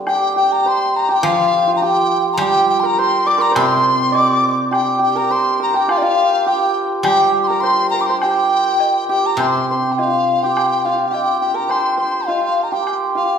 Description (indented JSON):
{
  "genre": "chinese traditional, Chinese chamber ensemble",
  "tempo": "103 BPM",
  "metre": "2/4",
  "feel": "rubato",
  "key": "G yu mode",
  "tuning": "A4 = 438 Hz",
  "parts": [
    { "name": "hammered dulcimer", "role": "second line", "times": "0.0-13.4 s", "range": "D3 to D5", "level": "-18 LUFS", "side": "right 3 dB", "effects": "none" },
    { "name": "guzheng", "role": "accompaniment", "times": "0.0-11.1 s", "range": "C3 to G3", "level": "-24 LUFS", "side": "right 1 dB", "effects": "none" },
    { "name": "mellow hollow large dizi", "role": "melody", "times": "0.1-13.4 s", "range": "D5 to D6", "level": "-17 LUFS", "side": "left 2 dB", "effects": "none" },
    { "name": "woodblock", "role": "percussion", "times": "0.1-13.0 s", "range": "none", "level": "-28 LUFS", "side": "left 2 dB", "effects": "none" }
  ],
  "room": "wet recital hall reverb, RT60 1.5 s",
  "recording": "heard from further back in the room",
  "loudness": "-14 LUFS",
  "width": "side -7 dB against mid",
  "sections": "0.1-9.4 A section; 9.4-13.4 B section",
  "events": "none",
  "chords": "none"
}